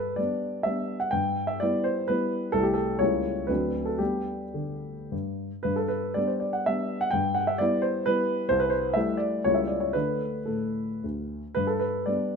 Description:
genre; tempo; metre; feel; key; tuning
classical, romantic triple-time dance for piano with dotted rhythms; 101-141 BPM; 3/4; rubato; G major; A4 = 440 Hz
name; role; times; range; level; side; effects
dark baby grand piano; solo; 0.0-12.4 s; C2 to G5; -25 LUFS; equal; none
room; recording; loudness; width
moderate recital hall reverb, RT60 1.5 s; close, detailed microphones; -25 LUFS; side -5 dB against mid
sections
0.0-5.7 A section; 5.7-12.4 A section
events
none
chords
0.0 G; 1.1 Em/G; 2.5 Am7/C; 3.0 C#dim7; 3.5 D7; 4.0 G; 7.1 Em/G; 8.5 Am7/C; 9.4 C#dim7; 9.9 D5; 11.6 G

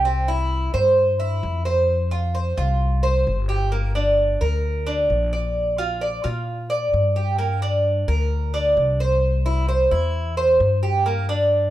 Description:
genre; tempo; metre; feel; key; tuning
latin, Cuban son and guajira; 131 BPM; 4/4; straight; unclear; A4 = 441 Hz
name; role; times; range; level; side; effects
Cuban tres; arpeggios; 0.0-11.7 s; Bb3 to D5; -20 LUFS; right 1 dB; none
upright bass; bass; 0.0-11.7 s; G1 to Bb2; -22 LUFS; left 1 dB; none
room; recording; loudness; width
light reverb; dark, warm production; -18 LUFS; side -14 dB against mid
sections
0.0-11.7 A section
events
none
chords
0.1 C; 1.9 F5; 3.7 Gm; 5.6 Bb; 7.4 Gm; 9.2 C; 11.1 Gm

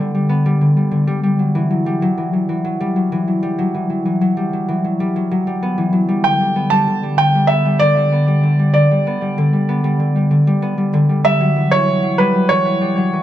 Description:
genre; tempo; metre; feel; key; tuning
folktronica; 96 BPM; 4/4; straight; E dorian; A4 = 440 Hz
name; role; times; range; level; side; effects
concert harp; arpeggios; 0.0-13.2 s; D3 to B3; -15 LUFS; left 1 dB; none
felt-muted upright piano; melody; 6.2-13.2 s; B4 to A5; -17 LUFS; right 2 dB; tape echo
room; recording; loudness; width
wet studio reverb, RT60 0.6 s; none; -14 LUFS; side -12 dB against mid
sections
0.0-13.2 A section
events
none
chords
0.0 G; 1.2 Emadd9; 6.2 G; 11.2 Emadd9

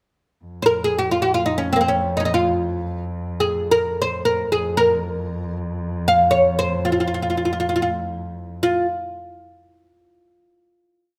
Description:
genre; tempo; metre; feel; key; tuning
Arabic maqam ensemble; free time; none; none; F maqam bayati; A4 = 440 Hz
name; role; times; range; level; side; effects
muted cello; drone; 0.5-8.6 s; F2; -30 LUFS; equal; none
oud; melody; 0.6-8.9 s; Bb3 to F5; -21 LUFS; equal; none
room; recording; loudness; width
light reverb; close, detailed microphones; -21 LUFS; mono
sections
0.5-8.6 free-time section; 8.6-10.6 final note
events
none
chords
none

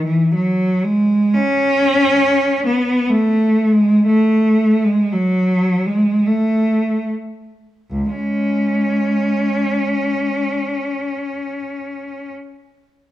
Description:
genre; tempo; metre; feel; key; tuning
classical, free, expressive piece for unaccompanied cello; 28-72 BPM; 3/4; rubato; C# minor; A4 = 441 Hz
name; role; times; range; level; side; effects
rich cello; solo; 0.0-12.3 s; C#2 to C#4; -15 LUFS; equal; none
room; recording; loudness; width
moderate recital hall reverb, RT60 1.4 s; dark, warm production; -14 LUFS; side -14 dB against mid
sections
0.0-7.9 A section; 7.9-11.5 B section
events
slowing down 0.0-7.9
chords
none

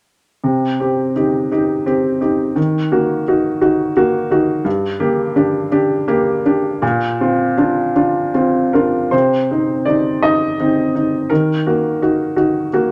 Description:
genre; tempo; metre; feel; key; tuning
neoclassical minimalist piano; 49-58 BPM (dotted quarters); 6/8; rubato; C minor; A4 = 441 Hz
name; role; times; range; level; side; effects
warm upright piano; solo; 0.4-12.9 s; G2 to Eb5; -16 LUFS; equal; none
room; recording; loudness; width
moderate large studio reverb, RT60 1.1 s; none; -16 LUFS; mono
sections
0.4-9.1 A section; 9.1-12.9 B section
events
none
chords
0.4 Cm; 2.6 Ebm; 4.7 Gm; 6.8 Bbadd9; 9.1 Cm; 11.3 Ebm

